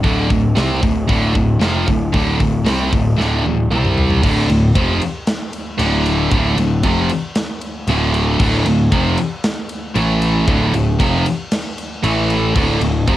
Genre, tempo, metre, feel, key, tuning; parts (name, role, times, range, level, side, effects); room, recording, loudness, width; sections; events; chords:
heavy metal; 115 BPM; 4/4; straight; D minor; A4 = 441 Hz
distorted electric guitar; riff; 0.0-13.2 s; D2 to C4; -19 LUFS; right 5 dB; overdrive, cassette tape
scooped high-gain guitar; riff; 0.0-13.2 s; D2 to C4; -21 LUFS; left 6 dB; distortion, cassette tape
fuzz picked electric bass; bass; 0.0-13.2 s; D1 to C2; -18 LUFS; equal; overdrive
tight metal drum kit; drums; 0.0-13.2 s; crash cymbal, hi-hat, kick drum, ride cymbal, snare drum, toms; -21 LUFS; equal; cassette tape
small room reverb; home recording on cassette; -14 LUFS; side -14 dB against mid
0.0-4.2 A section; 4.2-13.2 B section
drum fill 3.2-4.2; half time 4.2-13.2
0.0 Dm; 3.7 C5; 4.2 Dm; 10.0 A5; 10.5 Dm; 12.0 A5; 12.6 Dm